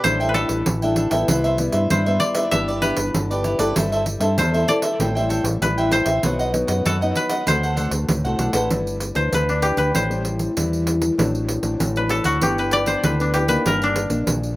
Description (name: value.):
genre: samba and choro.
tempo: 97 BPM.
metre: 4/4.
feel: straight.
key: G major from 8.7 s.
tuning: A4 = 442 Hz.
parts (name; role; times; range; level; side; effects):
koto; melody; 0.0-14.6 s; D4 to E5; -22 LUFS; left 1 dB; slapback echo.
cavaquinho; accompaniment; 0.0-8.7 s; D4 to G5; -24 LUFS; right 1 dB; slapback echo.
nylon-string guitar; accompaniment; 0.0-14.6 s; G2 to B4; -24 LUFS; left 2 dB; slapback echo.
deep dub fingered electric bass; bass; 0.0-14.6 s; G1 to G2; -24 LUFS; equal; none.
pandeiro; percussion; 0.0-14.6 s; none; -25 LUFS; right 2 dB; none.
room: little or no reverb.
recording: recorded outdoors, with no room sound.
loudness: -18 LUFS.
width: side -18 dB against mid.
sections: 0.0-8.7 A section; 8.7-14.6 B section.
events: koto solo 8.7-14.6.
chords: 0.0 A7sus4; 1.3 Cmaj7; 2.5 G6; 3.8 C6/G; 5.0 Am7; 6.2 B; 7.5 D7; 8.7 G6; 9.9 Am7; 11.2 D7/A; 12.4 G6; 13.7 Ebmaj7/G.